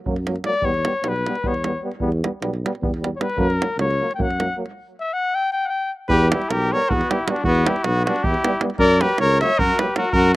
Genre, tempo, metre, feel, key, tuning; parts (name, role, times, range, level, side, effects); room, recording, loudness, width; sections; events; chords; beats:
balkan folk, Balkan brass band; 309 BPM (eighths); 7/8; straight; E dorian sharp4; A4 = 435 Hz
clear euphonium; accompaniment; 0.1-10.0 s; F#3 to G3; -30 LUFS; right 4 dB; slapback echo
warm trombone; accompaniment; 0.1-10.0 s; A#3 to B3; -30 LUFS; left 3 dB
mellow tuba; bass; 0.1-10.3 s; B1 to F#2; -22 LUFS; equal
davul; percussion; 0.1-10.3 s; -26 LUFS; right 2 dB
clear flugelhorn; second line; 0.5-10.3 s; B3 to G5; -22 LUFS; left 3 dB
warm cornet; melody; 6.1-10.3 s; F#4 to E5; -21 LUFS; equal
little or no reverb; recorded outdoors, with no room sound; -18 LUFS; side -18 dB against mid
0.0-6.1 A section; 6.1-10.4 B section
speeding up 0.0-10.4; flugelhorn solo 0.0-6.1; stop 4.7-6.1
0.0 F#; 0.6 Em; 3.4 F#; 4.7 N.C.; 6.1 Em; 8.8 F#
0.03 0.23 0.42 | 0.62 0.82 1.02 1.22 1.41 1.61 1.81 | 2.00 2.20 2.40 2.59 2.79 2.98 3.18 | 3.38 3.57 3.77 3.96 4.16 4.35 4.55 | 4.74 4.94 5.13 5.32 5.52 5.71 5.91 | 6.10 6.29 6.48 6.68 6.87 7.06 7.25 | 7.45 7.64 7.83 8.02 8.21 8.40 8.60 | 8.79 8.98 9.17 9.36 9.55 9.74 9.94 | 10.12 10.32